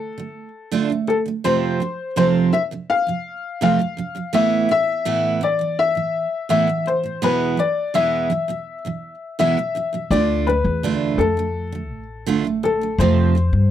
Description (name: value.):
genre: pop.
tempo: 83 BPM.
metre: 4/4.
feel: straight.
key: A minor.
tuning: A4 = 439 Hz.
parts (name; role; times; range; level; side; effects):
warm upright piano; melody; 0.0-13.7 s; A4 to F5; -21 LUFS; left 4 dB; none.
picked steel-string acoustic guitar; accompaniment; 0.0-13.7 s; E2 to F4; -21 LUFS; right 6 dB; none.
upright bass; bass; 10.1-13.7 s; A1 to G2; -20 LUFS; left 1 dB; none.
room: little or no reverb.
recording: dry, close 1970s-style studio recording.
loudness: -18 LUFS.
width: side -10 dB against mid.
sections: 0.0-13.7 A section.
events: none.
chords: 0.0 Dm; 1.5 F; 4.3 Asus2; 7.2 E; 10.1 Dm; 13.0 F.